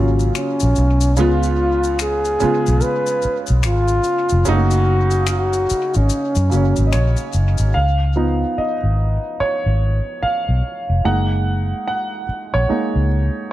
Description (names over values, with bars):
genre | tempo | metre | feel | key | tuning
R&B, neo-soul | 73 BPM | 4/4 | swing 62% on 16ths | F# major | A4 = 443 Hz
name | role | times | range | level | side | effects
mellow trombone | melody | 0.0-7.2 s | C#4 to B4 | -20 LUFS | equal | dub echo
clear concert grand piano | accompaniment | 0.0-13.5 s | C#3 to F#5 | -21 LUFS | right 2 dB | none
vintage muted fingered electric bass | bass | 0.0-13.3 s | E#1 to F#2 | -17 LUFS | equal | none
maracas and finger snaps | percussion | 0.2-7.7 s | none | -30 LUFS | left 8 dB | dub echo
room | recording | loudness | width
light reverb, small room ambience | echo-heavy mix | -15 LUFS | side -14 dB against mid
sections
0.0-7.7 A section; 7.7-13.5 B section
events
grand piano solo 7.7-13.5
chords
0.0 F#6; 1.2 C#7; 4.5 F#6; 7.7 C#7; 11.0 F#6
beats
0.35 | 1.17 1.99 2.81 3.63 | 4.46 5.28 6.10 6.92 | 7.74 8.56 9.39 10.21 | 11.03 11.85 12.68 13.50